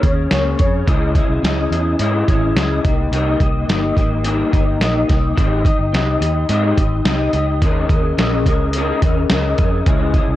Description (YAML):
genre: indie pop, bedroom pop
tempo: 107 BPM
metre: 4/4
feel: straight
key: unclear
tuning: A4 = 440 Hz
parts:
  - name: electric guitar through a small old amp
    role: accompaniment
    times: 0.0-10.4 s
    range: C3 to Eb5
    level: -18 LUFS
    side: left 2 dB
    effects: ensemble chorus, warbly pitch drift
  - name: vintage muted fingered electric bass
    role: bass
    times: 0.0-10.4 s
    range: G1 to Ab2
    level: -20 LUFS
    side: equal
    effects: none
  - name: lo-fi sampler-style drum kit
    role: drums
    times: 0.0-10.3 s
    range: hi-hat, kick drum, snare drum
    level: -18 LUFS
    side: equal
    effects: none
room: little or no reverb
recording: cassette tape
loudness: -14 LUFS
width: side -14 dB against mid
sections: 0.0-10.4 A section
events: none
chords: 0.0 Eb7sus4; 0.9 Dbmadd9; 2.8 Cm7; 5.4 Abmaj7; 7.6 Eb7sus4